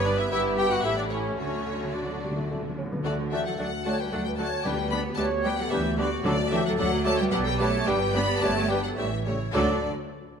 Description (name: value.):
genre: quick classical-period movement for symphony orchestra.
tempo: 111 BPM.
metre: 3/4.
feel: straight.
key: D major.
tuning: A4 = 438 Hz.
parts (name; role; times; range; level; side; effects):
warm studio violin section; melody; 0.0-9.8 s; C#5 to B5; -32 LUFS; left 5 dB; none.
mellow clarinet; second line; 0.0-9.8 s; F#4 to D5; -38 LUFS; left 2 dB; none.
rich studio violin section; second line; 0.0-9.9 s; C#4 to B4; -37 LUFS; left 4 dB; none.
small flute group; second line; 0.0-9.9 s; E4 to G5; -33 LUFS; right 3 dB; none.
mellow bassoon; accompaniment; 0.0-9.8 s; F#3 to C#4; -33 LUFS; right 2 dB; none.
warm studio viola section; accompaniment; 0.0-9.8 s; F#3 to G4; -36 LUFS; left 1 dB; none.
dark French horn section; sustained chords; 0.0-9.8 s; A3 to G4; -34 LUFS; left 3 dB; none.
rich studio double bass section; bass; 0.0-9.9 s; G1 to D2; -32 LUFS; right 2 dB; none.
warm symphonic cello section; bass; 0.0-9.8 s; G2 to B3; -32 LUFS; right 2 dB; none.
mellow cor anglais; second line; 0.1-9.8 s; C#4 to F#5; -36 LUFS; right 2 dB; none.
timpani; percussion; 1.4-7.0, 9.5-9.8 s; D3; -35 LUFS; left 1 dB; none.
room: moderate scoring stage reverb, RT60 1.7 s.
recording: none.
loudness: -24 LUFS.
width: side -7 dB against mid.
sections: 0.0-3.0 A section; 3.0-9.5 B section.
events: timpani fill 1.4-3.0.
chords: 0.0 G; 0.8 A7; 1.4 D; 4.7 G/D; 6.2 D; 7.3 G/B; 7.9 G; 9.0 A7; 9.5 D.